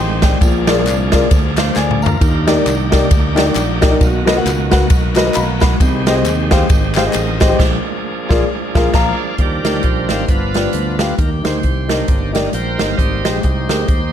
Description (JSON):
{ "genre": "uptempo gospel", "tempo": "134 BPM", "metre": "4/4", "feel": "swing 59% on 8ths", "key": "Eb major", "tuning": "A4 = 438 Hz", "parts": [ { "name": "warm upright piano", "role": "accompaniment", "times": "0.0-13.8 s", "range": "G2 to C6", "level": "-18 LUFS", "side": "left 3 dB", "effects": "none" }, { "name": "bright tonewheel organ", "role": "sustained chords", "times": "0.0-14.1 s", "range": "Eb3 to G5", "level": "-22 LUFS", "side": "right 3 dB", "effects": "fast rotary speaker, overdrive" }, { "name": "fingered electric bass", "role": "bass", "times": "0.0-14.1 s", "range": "G1 to Eb2", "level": "-20 LUFS", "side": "equal", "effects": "none" }, { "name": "swinging big-band drum kit", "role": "drums", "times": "0.2-14.0 s", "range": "crash cymbal, hi-hat, kick drum, ride cymbal, snare drum, toms", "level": "-15 LUFS", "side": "equal", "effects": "none" }, { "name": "tambourine and handclaps", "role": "percussion", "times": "0.2-7.5 s", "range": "none", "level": "-30 LUFS", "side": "left 2 dB", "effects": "none" } ], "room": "light reverb, small room ambience", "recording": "none", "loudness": "-12 LUFS", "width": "side -9 dB against mid", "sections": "0.0-9.4 A section; 9.4-14.1 B section", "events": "drum fill 1.8-2.2; upright piano fill 5.1-5.8; band accent 7.6-9.4; tonewheel organ solo 9.4-14.1", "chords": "0.4 Bb7; 2.2 Ebmaj7; 4.0 Bmaj7; 5.8 Abmaj7/C; 7.6 Bb7; 9.4 Ebmaj7; 10.3 G7; 11.2 Cm7; 13.0 Abmaj7" }